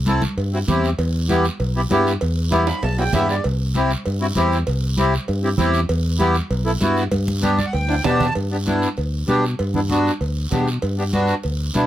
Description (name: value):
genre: latin, cumbia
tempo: 195 BPM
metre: 4/4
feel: straight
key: G major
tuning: A4 = 441 Hz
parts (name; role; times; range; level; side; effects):
- fingered electric bass; bass; 0.0-11.9 s; B1 to B2; -21 LUFS; equal; none
- accordion; accompaniment; 0.1-11.9 s; B3 to B5; -20 LUFS; equal; none
- congas; percussion; 0.1-11.9 s; none; -26 LUFS; right 1 dB; none
- cowbell and timbales; percussion; 0.1-11.9 s; none; -29 LUFS; right 4 dB; none
- guiro; percussion; 0.1-11.9 s; none; -33 LUFS; right 3 dB; none
room: light reverb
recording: close, detailed microphones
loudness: -17 LUFS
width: side -13 dB against mid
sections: 0.0-8.4 A section; 8.4-11.9 B section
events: drum fill 2.5-3.4, 7.1-8.4; accordion fill 2.5-3.4, 7.4-8.4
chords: 0.0 C; 1.0 Em; 3.4 C; 5.9 Em; 7.1 G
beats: 0.07 0.37 0.68 | 0.99 1.29 1.60 1.91 | 2.22 2.52 2.83 3.14 | 3.44 3.75 4.06 4.37 | 4.67 4.98 5.29 5.59 | 5.90 6.21 6.51 6.82 | 7.13 7.44 7.74 8.05 | 8.36 8.67 8.98 9.28 | 9.59 9.90 10.21 10.52 | 10.83 11.13 11.44 11.75